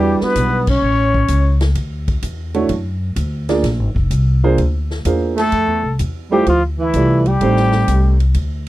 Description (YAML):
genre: jazz, small-group swing and bop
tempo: 128 BPM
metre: 4/4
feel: swing 69% on 8ths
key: F major from 5.5 s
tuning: A4 = 440 Hz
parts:
  - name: trumpet with plunger mute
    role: melody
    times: 0.0-1.6, 5.4-8.2 s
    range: E4 to C#5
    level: -19 LUFS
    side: left 4 dB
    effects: none
  - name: breathy tenor saxophone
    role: second line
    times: 0.0-1.6, 5.4-8.2 s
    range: E3 to C#4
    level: -19 LUFS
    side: right 3 dB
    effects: none
  - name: warm grand piano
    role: accompaniment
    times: 0.0-8.1 s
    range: G3 to D5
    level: -18 LUFS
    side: right 4 dB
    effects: none
  - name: upright bass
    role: bass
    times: 0.0-8.7 s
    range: F1 to F#2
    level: -17 LUFS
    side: left 1 dB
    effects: none
  - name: swinging big-band drum kit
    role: drums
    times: 0.2-8.7 s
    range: crash cymbal, hi-hat, kick drum, ride cymbal, snare drum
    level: -25 LUFS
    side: equal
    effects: none
room: little or no reverb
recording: dry, close 1970s-style studio recording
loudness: -14 LUFS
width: side -16 dB against mid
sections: 0.0-5.5 A section; 5.5-8.7 B section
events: band accent 0.6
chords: 0.0 Em9; 0.8 A; 1.8 Dadd9; 3.6 Bb9; 5.5 Fmaj7; 7.4 Am7b5